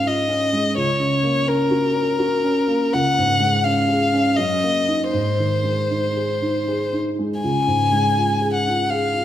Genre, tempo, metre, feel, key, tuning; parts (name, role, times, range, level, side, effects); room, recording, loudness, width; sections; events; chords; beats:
classical, romantic duo for violin and grand piano; 81 BPM; 3/4; uneven beats, rubato; Db major; A4 = 440 Hz
clear violin; melody; 0.0-9.2 s; Bb4 to Ab5; -20 LUFS; left 3 dB
dark baby grand piano; accompaniment; 0.0-9.2 s; Db2 to Ab4; -20 LUFS; right 1 dB
wet concert hall reverb, RT60 1.9 s; minimal, uncompressed stereo recording; -17 LUFS; side -11 dB against mid
0.0-9.2 A section
0.0 Db; 0.8 Gb/Db; 2.9 Db; 4.4 Ebm/Gb; 5.1 Ab; 7.4 Db
0.06 | 0.77 1.48 2.18 | 2.93 3.64 4.37 | 5.12 5.89 6.65 | 7.41 8.15 8.89